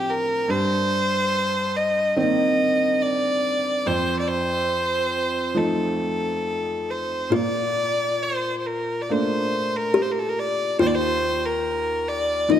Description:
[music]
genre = celtic folk, Celtic slow air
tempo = 70 BPM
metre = 4/4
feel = uneven beats, rubato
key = unclear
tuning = A4 = 438 Hz
[part]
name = clear fiddle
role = melody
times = 0.0-12.6 s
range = G4 to Eb5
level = -22 LUFS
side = left 1 dB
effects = none
[part]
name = clear upright piano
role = accompaniment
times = 0.0-12.6 s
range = Eb2 to Eb4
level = -26 LUFS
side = right 2 dB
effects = none
[part]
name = kalimba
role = second line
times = 7.3-12.6 s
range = Eb4 to G4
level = -25 LUFS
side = left 4 dB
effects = none
[sound]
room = moderate scoring stage reverb, RT60 2.1 s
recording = none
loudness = -20 LUFS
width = side -10 dB against mid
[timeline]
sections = 0.0-12.6 A section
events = none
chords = 0.5 Cm7/G; 3.8 F7; 7.3 Bbmaj7; 10.8 Ebsus2

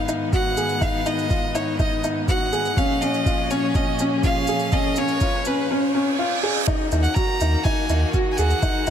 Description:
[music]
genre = piano and strings electronica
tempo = 123 BPM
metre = 4/4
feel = straight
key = Eb minor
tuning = A4 = 440 Hz
[part]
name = bright violin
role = melody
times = 0.0-8.9 s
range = Cb5 to Bb5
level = -26 LUFS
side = equal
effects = shimmer reverb
[part]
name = warm string quartet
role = sustained chords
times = 0.0-8.9 s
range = Ab2 to Gb4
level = -29 LUFS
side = equal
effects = sidechain pumping, shimmer reverb
[part]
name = riser and reverse cymbal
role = sound effects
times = 2.2-6.7 s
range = none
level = -31 LUFS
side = right 2 dB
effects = none
[part]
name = felt-muted upright piano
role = riff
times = 0.1-8.9 s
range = Db4 to Ab4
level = -24 LUFS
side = left 1 dB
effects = ping-pong delay, shimmer reverb
[part]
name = shaker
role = drums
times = 0.1-8.9 s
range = none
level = -36 LUFS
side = right 3 dB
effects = none
[part]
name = electronic kick drum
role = drums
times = 0.3-8.7 s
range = none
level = -23 LUFS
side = equal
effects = none
[part]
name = warm sub bass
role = bass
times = 6.9-8.9 s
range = Eb2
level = -20 LUFS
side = equal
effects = sidechain pumping
[sound]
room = moderate huge ambient reverb, RT60 6.1 s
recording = none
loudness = -19 LUFS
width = side -9 dB against mid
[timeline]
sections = 0.0-6.7 A section; 6.7-8.9 B section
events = build-up 0.0-6.7; riser 2.2-6.7; reverse cymbal 5.7-6.7; drop 6.7-8.9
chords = 0.0 Abm; 2.8 Bbm; 6.7 Ebm

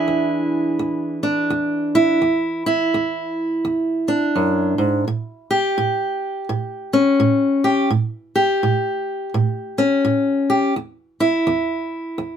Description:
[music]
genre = blues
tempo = 84 BPM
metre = 4/4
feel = swing 61% on 8ths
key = unclear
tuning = A4 = 440 Hz
[part]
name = fingerpicked steel-string acoustic guitar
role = solo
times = 0.0-12.4 s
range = E2 to G#4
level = -17 LUFS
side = equal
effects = none
[sound]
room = little or no reverb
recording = close, detailed microphones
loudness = -17 LUFS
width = side -8 dB against mid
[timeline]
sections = 0.0-12.4 A section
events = none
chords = 0.0 E7; 5.1 A7; 10.8 N.C.

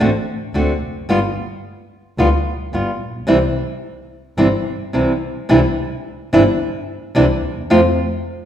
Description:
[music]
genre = tango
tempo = 109 BPM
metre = 4/4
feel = rubato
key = C major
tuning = A4 = 437 Hz
[part]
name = flamenco guitar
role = accompaniment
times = 0.0-7.8 s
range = C3 to F#4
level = -16 LUFS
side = equal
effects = none
[part]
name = dark double bass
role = bass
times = 0.0-7.9 s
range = F1 to F2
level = -22 LUFS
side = equal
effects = none
[sound]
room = wet recital hall reverb, RT60 1.6 s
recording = recorded in a church or concert hall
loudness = -15 LUFS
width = side -10 dB against mid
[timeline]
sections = 0.0-5.5 A section; 5.5-8.5 A section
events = none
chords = 0.0 D7; 1.1 G7; 3.3 C; 5.5 Cadd9; 7.7 F5

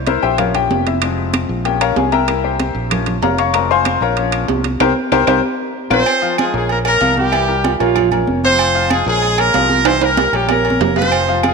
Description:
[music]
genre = latin, salsa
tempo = 190 BPM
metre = 4/4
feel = straight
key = unclear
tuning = A4 = 442 Hz
[part]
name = fingered electric bass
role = bass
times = 0.0-11.5 s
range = F1 to C2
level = -22 LUFS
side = right 2 dB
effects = none
[part]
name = bright baby grand piano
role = accompaniment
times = 0.1-11.5 s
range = E3 to Db6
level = -18 LUFS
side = left 9 dB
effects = none
[part]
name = congas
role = percussion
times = 0.1-11.5 s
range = none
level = -22 LUFS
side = right 2 dB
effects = none
[part]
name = timbales and agogo bells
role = percussion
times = 0.1-11.5 s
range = none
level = -21 LUFS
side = right 14 dB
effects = none
[part]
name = claves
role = percussion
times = 0.4-11.5 s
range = none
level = -28 LUFS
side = left 11 dB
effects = none
[part]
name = brilliant horn section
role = melody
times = 5.9-11.5 s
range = G3 to C5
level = -16 LUFS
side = right 1 dB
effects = none
[part]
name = warm French horn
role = second line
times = 7.5-8.3 s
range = Db4 to F4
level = -20 LUFS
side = right 12 dB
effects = none
[sound]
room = moderate plate reverb, RT60 2.5 s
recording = 1960s-style stereo with parts hard left and right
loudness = -13 LUFS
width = side -4 dB against mid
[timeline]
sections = 0.0-6.1 A section; 6.1-11.5 B section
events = grand piano solo 0.0-6.1; band accent 4.8-6.1; drum fill 5.6-6.1, 9.9-11.1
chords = 0.4 Bbm; 1.0 Fm; 1.7 Bbm; 2.3 C7; 2.9 Bbm; 3.5 Fm; 4.2 Bbm; 4.8 C5; 5.4 Bbm; 7.3 C7; 8.0 Bbm; 9.9 C7; 10.5 Bbm

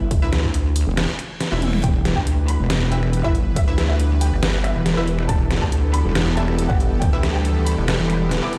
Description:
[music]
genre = heavy wobble dubstep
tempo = 139 BPM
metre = 4/4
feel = half-time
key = E minor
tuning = A4 = 441 Hz
[part]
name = pulsing pluck wobble bass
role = bass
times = 0.0-8.4 s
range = E1 to D2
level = -22 LUFS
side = equal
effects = chorus, overdrive
[part]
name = dubstep drum kit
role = drums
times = 0.1-8.6 s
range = finger snaps, hi-hat, snare drum, toms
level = -27 LUFS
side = equal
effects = none
[part]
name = electronic kick drum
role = drums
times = 0.1-7.1 s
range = none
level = -23 LUFS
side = equal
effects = none
[part]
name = orchestra-hit-like synth stab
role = stabs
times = 0.2-8.5 s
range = E4 to E5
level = -33 LUFS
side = equal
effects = built-in reverb, delay
[part]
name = wobble bass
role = bass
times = 0.9-6.7 s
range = E1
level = -22 LUFS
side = equal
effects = chorus, overdrive
[part]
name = reverse cymbal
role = sound effects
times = 1.2-1.8 s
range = none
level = -37 LUFS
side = equal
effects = none
[part]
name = dark studio violin section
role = melody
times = 1.8-8.6 s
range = B4 to D6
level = -33 LUFS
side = equal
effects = delay
[part]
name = supersaw pad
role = sustained chords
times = 1.8-8.6 s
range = E3 to B4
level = -30 LUFS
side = equal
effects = sidechain pumping
[sound]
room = digital ambience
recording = played on a big sound system in a bare room, stone room reverb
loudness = -20 LUFS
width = mono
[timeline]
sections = 0.0-8.6 A section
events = reverse cymbal 1.2-1.8; drum fill 1.5-1.8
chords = 0.0 Em

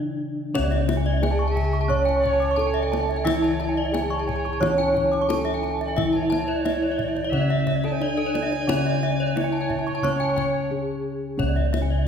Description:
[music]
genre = Balinese gamelan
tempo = 88 BPM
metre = 4/4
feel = straight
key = C# pelog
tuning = A4 = 441 Hz
[part]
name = gamelan-type bronze metallophone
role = melody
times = 0.0-12.1 s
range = C#4 to C#5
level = -26 LUFS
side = right 1 dB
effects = none
[part]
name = gamelan-type bronze metallophone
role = accompaniment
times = 0.0-12.1 s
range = C#3 to C#4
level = -30 LUFS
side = left 2 dB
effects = none
[part]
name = gamelan-type bossed gongs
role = bass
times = 0.0-12.1 s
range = C#2 to E4-30c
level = -27 LUFS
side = equal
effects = none
[part]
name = gamelan-type bronze metallophone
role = arpeggios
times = 0.5-12.0 s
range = A4-20c to D6+20c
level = -29 LUFS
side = left 4 dB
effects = none
[part]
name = gamelan-type bronze metallophone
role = arpeggios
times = 0.6-12.1 s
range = C#5 to C#6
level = -32 LUFS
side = right 6 dB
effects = none
[part]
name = kendang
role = percussion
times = 0.6-11.9 s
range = none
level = -32 LUFS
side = left 3 dB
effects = none
[part]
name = breathy bright tenor recorder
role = second line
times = 1.3-10.7 s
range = C#5 to A5-22c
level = -32 LUFS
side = right 4 dB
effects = none
[sound]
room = wet scoring stage reverb, RT60 2.2 s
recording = heard from further back in the room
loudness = -21 LUFS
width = side -7 dB against mid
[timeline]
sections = 0.5-11.4 A section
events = break 0.0-0.5, 10.4-11.4; drum fill 0.0-0.5, 10.7-11.4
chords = none

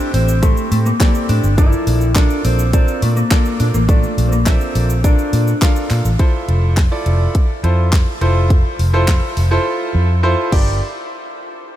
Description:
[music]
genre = dance-pop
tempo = 104 BPM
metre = 4/4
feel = straight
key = unclear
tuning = A4 = 440 Hz
[part]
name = mellow electric guitar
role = melody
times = 0.0-5.9 s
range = A3 to E4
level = -21 LUFS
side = left 1 dB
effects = ping-pong delay
[part]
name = clear baby grand piano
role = accompaniment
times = 0.0-10.8 s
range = F3 to F5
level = -22 LUFS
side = right 1 dB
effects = sidechain pumping
[part]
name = pop drum kit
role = drums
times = 0.0-10.7 s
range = crash cymbal, handclaps, hi-hat, kick drum, shaker, snare drum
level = -16 LUFS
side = equal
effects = none
[part]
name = vintage muted fingered electric bass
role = bass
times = 0.1-10.8 s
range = F1 to Bb2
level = -15 LUFS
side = equal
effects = sidechain pumping
[sound]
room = light reverb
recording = none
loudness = -13 LUFS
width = side -12 dB against mid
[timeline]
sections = 0.0-6.2 A section; 6.2-10.8 B section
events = drums muted 9.7-10.8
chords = 0.0 Am7; 1.6 Bbmaj7; 6.2 Fmaj7; 10.5 Gm; 10.8 N.C.

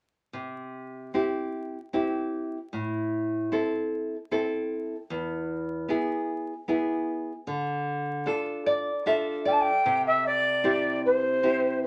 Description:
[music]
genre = andean folk, Andean ensemble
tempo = 76 BPM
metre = 3/4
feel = straight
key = unclear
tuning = A4 = 437 Hz
[part]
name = nylon-string guitar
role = accompaniment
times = 0.3-11.9 s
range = E2 to E5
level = -30 LUFS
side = equal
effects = none
[part]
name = mellow quena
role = melody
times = 9.5-11.9 s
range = C5 to A5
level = -25 LUFS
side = equal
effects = none
[sound]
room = wet studio reverb, RT60 0.6 s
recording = vinyl crackle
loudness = -28 LUFS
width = mono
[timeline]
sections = 0.3-9.8 A section; 9.8-11.9 B section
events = nylon-string guitar fill 8.3-9.8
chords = 0.3 C; 2.7 Am; 5.1 E; 7.5 Dm; 9.8 C

